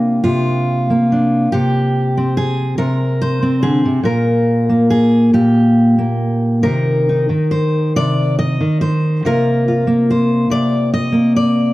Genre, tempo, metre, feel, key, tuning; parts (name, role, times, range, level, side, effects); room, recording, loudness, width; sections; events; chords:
folk, solo fingerstyle acoustic guitar; 47 BPM (dotted quarters); 6/8; rubato; A4 = 440 Hz
fingerpicked steel-string acoustic guitar; solo; 0.0-11.7 s; Bb2 to Eb5; -13 LUFS; equal
moderate recital hall reverb, RT60 1.4 s; dark, warm production; -13 LUFS; side -17 dB against mid
0.0-11.7 A section
0.0 Bbadd9/C; 1.5 Bb7sus2/C; 4.0 N.C.; 6.6 Cm; 9.2 Bbsus2/C